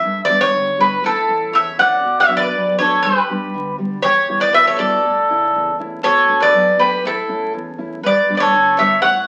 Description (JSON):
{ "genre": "greek folk, Greek bouzouki band", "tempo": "120 BPM", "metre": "2/4", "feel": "straight", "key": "unclear", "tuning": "A4 = 441 Hz", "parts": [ { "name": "Greek bouzouki", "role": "melody", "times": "0.0-9.3 s", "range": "A4 to F#5", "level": "-17 LUFS", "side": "equal", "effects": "none" }, { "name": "nylon-string guitar", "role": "accompaniment", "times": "0.0-9.3 s", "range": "E2 to E4", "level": "-28 LUFS", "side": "equal", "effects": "none" }, { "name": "bowl-back mandolin", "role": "second line", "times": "1.0-9.3 s", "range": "E4 to D5", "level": "-22 LUFS", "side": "equal", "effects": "none" } ], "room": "wet club reverb, RT60 0.7 s", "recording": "very old 78 rpm record, vinyl crackle", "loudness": "-16 LUFS", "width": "mono", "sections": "0.0-6.0 A section; 6.0-9.3 A section", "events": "none", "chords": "0.0 G; 1.0 A; 2.0 Bm; 3.0 G; 4.0 Em; 5.0 A; 6.0 Bm7; 7.0 A; 8.0 G", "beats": "| 0.05 0.55 | 1.04 1.54 | 2.04 2.54 | 3.04 3.54 | 4.04 4.54 | 5.04 5.54 | 6.04 6.54 | 7.04 7.54 | 8.04 8.54 | 9.04" }